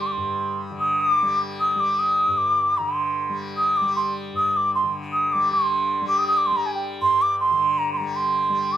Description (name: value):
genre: indian classical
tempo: 155 BPM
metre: 7/4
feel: straight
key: G raga bhairavi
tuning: A4 = 442 Hz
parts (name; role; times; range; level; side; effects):
- bansuri; melody; 0.0-8.8 s; G5 to Eb6+21c; -20 LUFS; right 1 dB; plate reverb
- tanpura; drone; 0.0-8.8 s; G2 to G3; -31 LUFS; left 2 dB; none
room: moderate studio ambience, RT60 0.5 s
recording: none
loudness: -19 LUFS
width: side -11 dB against mid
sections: 0.0-5.5 A section; 5.5-8.8 B section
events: speeding up 0.0-8.8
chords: none